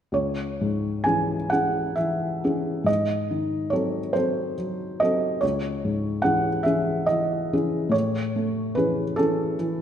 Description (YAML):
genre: classical, romantic nocturne for solo piano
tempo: 44-50 BPM (dotted quarters)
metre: 6/8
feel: rubato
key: C# minor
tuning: A4 = 440 Hz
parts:
  - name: felt-muted upright piano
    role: solo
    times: 0.1-9.8 s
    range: C#2 to G#5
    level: -22 LUFS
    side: equal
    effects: none
room: moderate scoring stage reverb, RT60 1.6 s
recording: none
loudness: -22 LUFS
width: side -9 dB against mid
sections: 0.2-9.8 A section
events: none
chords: 0.2 C#m; 2.9 G#7b9; 5.4 C#m; 7.9 Amaj7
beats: | 0.15 1.52 | 2.88 4.15 | 5.43 6.65 | 7.93 9.18